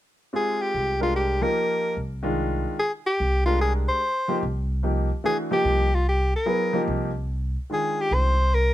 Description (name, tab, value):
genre	jazz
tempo	146 BPM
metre	3/4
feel	swing 66% on 8ths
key	F dorian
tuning	A4 = 439 Hz
part	clear baby grand piano	accompaniment	0.3-8.3 s	Eb3 to Bb4	-27 LUFS	equal	none
part	warm soprano saxophone	melody	0.4-8.7 s	F4 to C5	-23 LUFS	left 1 dB	none
part	upright bass	bass	0.7-8.7 s	C2	-24 LUFS	equal	none
room	little or no reverb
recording	close, detailed microphones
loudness	-22 LUFS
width	side -14 dB against mid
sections	0.3-8.7 A section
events	none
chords	0.3 Fm11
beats	| 0.33 0.74 1.15 | 1.56 1.97 2.38 | 2.79 3.20 3.61 | 4.02 4.43 4.84 | 5.25 5.66 6.07 | 6.48 6.89 7.30 | 7.71 8.12 8.53